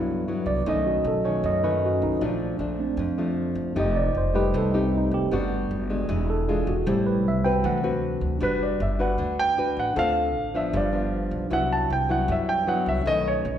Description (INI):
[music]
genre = bossa nova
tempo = 155 BPM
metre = 4/4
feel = straight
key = G major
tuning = A4 = 440 Hz
[part]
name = nylon-string guitar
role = accompaniment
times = 0.0-13.6 s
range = F2 to B4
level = -27 LUFS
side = left 2 dB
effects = none
[part]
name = tine electric piano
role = accompaniment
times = 0.0-13.6 s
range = C3 to F#6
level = -27 LUFS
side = right 2 dB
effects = none
[part]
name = upright bass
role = bass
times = 0.0-13.6 s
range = E1 to G2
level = -29 LUFS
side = equal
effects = none
[part]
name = warm concert grand piano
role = melody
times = 8.4-13.6 s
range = B4 to A5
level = -25 LUFS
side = right 1 dB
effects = none
[sound]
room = wet recital hall reverb, RT60 1.4 s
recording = recorded in a church or concert hall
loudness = -22 LUFS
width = side -10 dB against mid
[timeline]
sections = 0.0-8.4 A section; 8.4-13.6 B section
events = tine electric piano solo 0.0-8.4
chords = 0.0 Cmaj9#11; 0.7 B9; 2.2 Bbmaj7; 3.8 F9; 5.3 Gmaj7; 6.1 E7b9; 6.9 Am7; 7.6 D13; 8.4 Gmaj7; 10.0 Dm7; 10.7 G7; 11.5 Cmaj9#11; 13.1 B9